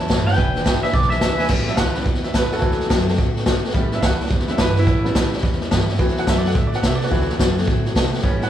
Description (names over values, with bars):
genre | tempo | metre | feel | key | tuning
rockabilly | 214 BPM | 4/4 | swing 62% on 8ths | A mixolydian | A4 = 439 Hz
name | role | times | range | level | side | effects
bright upright piano | accompaniment | 0.0-8.5 s | C#3 to A5 | -25 LUFS | right 1 dB | none
picked steel-string acoustic guitar | accompaniment | 0.0-8.5 s | E2 to F#4 | -26 LUFS | left 5 dB | none
upright bass | bass | 0.0-8.5 s | E1 to C3 | -23 LUFS | right 1 dB | none
vintage drum kit | drums | 0.1-8.4 s | crash cymbal, hi-hat, kick drum, snare drum | -19 LUFS | equal | none
electric guitar through a small old amp | melody | 0.3-1.5 s | D5 to G5 | -22 LUFS | equal | warbly pitch drift
room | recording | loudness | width
moderate stone room reverb, RT60 1.3 s | band playing live in one room, small room ambience | -16 LUFS | side -11 dB against mid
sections
0.0-1.5 A section; 1.5-8.5 B section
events
upright piano solo 1.5-8.5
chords
0.4 E7; 1.5 A7; 2.6 D7; 3.7 A7; 6.0 D7